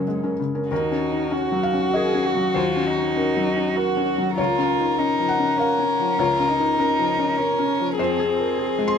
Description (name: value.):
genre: neoclassical piano and strings.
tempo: 99 BPM.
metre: 3/4.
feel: rubato.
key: unclear.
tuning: A4 = 442 Hz.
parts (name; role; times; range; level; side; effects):
dark cello; second line; 0.0-9.0 s; Gb3 to Ab4; -26 LUFS; right 7 dB; none.
felt-muted upright piano; accompaniment; 0.0-9.0 s; Db2 to C6; -23 LUFS; left 3 dB; none.
rich violin; melody; 0.7-9.0 s; Gb4 to Bb4; -23 LUFS; left 2 dB; none.
room: light reverb.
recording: minimal, uncompressed stereo recording.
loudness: -19 LUFS.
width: side -7 dB against mid.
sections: 0.7-9.0 A section.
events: none.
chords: 0.0 Gbadd9; 0.7 Ebm7; 4.4 Bbm/Db; 8.0 Fm.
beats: 0.07 | 0.71 1.32 1.94 | 2.55 3.16 3.77 | 4.38 4.99 5.59 | 6.19 6.79 7.38 | 7.98 8.58.